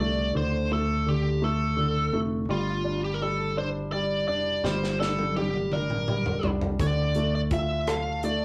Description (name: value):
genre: six-eight pop ballad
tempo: 56 BPM (dotted quarters)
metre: 6/8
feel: straight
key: D minor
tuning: A4 = 443 Hz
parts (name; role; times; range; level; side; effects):
- biting lead guitar; melody; 0.0-8.4 s; F4 to F5; -31 LUFS; equal; overdrive
- clear grand piano; accompaniment; 0.0-8.4 s; D3 to A4; -32 LUFS; equal; none
- fingered electric bass; bass; 0.0-8.4 s; F1 to D2; -32 LUFS; equal; none
- modern studio drum kit; drums; 4.6-8.4 s; hi-hat, kick drum, rim click, snare drum, toms; -33 LUFS; equal; none
room: moderate studio reverb, RT60 0.6 s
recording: rough rehearsal-room recording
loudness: -27 LUFS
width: mono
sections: 0.0-8.4 A section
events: drum fill 4.6-6.8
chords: 0.0 Dm7; 2.5 G5; 6.8 Dm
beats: | 0.34 1.41 | 2.49 3.57 | 4.64 5.72 | 6.80 7.87